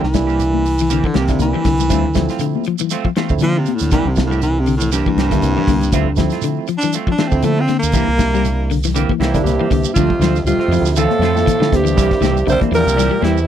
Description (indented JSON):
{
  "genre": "afrobeat",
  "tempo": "119 BPM",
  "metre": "4/4",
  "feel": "swing 55% on 16ths",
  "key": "D minor",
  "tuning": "A4 = 438 Hz",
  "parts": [
    { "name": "warm baritone saxophone", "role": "melody", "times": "0.0-8.8 s", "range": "G2 to D4", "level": "-19 LUFS", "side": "equal", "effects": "none" },
    { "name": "barky tine electric piano", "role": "accompaniment", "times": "0.0-13.0 s", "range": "F3 to E5", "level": "-24 LUFS", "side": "right 12 dB", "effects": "overdrive" },
    { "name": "electric guitar at the edge of break-up", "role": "arpeggios", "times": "0.0-13.4 s", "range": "D3 to G3", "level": "-21 LUFS", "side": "left 9 dB", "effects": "none" },
    { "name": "semi-hollow electric guitar", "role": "stabs", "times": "0.0-13.4 s", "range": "E3 to G4", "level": "-25 LUFS", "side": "right 9 dB", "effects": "lush chorus, tape echo" },
    { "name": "fingered electric bass", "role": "bass", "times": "0.0-13.5 s", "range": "C2 to D3", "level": "-18 LUFS", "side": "equal", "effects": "none" },
    { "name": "warm soul drum kit", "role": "drums", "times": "0.0-13.4 s", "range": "hi-hat, kick drum, snare drum", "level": "-20 LUFS", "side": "equal", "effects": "none" },
    { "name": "congas", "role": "percussion", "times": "0.1-13.4 s", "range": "none", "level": "-24 LUFS", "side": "left 24 dB", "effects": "none" },
    { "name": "shekere", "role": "percussion", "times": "0.1-13.5 s", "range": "none", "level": "-28 LUFS", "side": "right 12 dB", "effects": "none" },
    { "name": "breathy alto saxophone", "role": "melody", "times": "9.2-13.5 s", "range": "E4 to C5", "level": "-18 LUFS", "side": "right 1 dB", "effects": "none" },
    { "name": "bright trombone section", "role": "second line", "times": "9.2-13.5 s", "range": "E2 to C3", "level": "-26 LUFS", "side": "right 9 dB", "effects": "none" },
    { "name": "growling tenor saxophone", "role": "second line", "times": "9.2-13.5 s", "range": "C3 to G3", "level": "-25 LUFS", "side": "right 4 dB", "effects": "tape echo" }
  ],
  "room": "little or no reverb",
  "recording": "dry, close 1970s-style studio recording",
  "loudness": "-14 LUFS",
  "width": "side -10 dB against mid",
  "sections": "0.0-10.0 A section; 10.0-13.5 B section",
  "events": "baritone saxophone solo 0.0-10.0; drum fill 1.4-1.9; tine electric piano fill 9.2-10.0",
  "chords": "0.0 C7; 1.9 Dm7; 3.9 C7; 5.9 Dm7; 7.9 C7; 10.0 Dm7; 12.0 C7"
}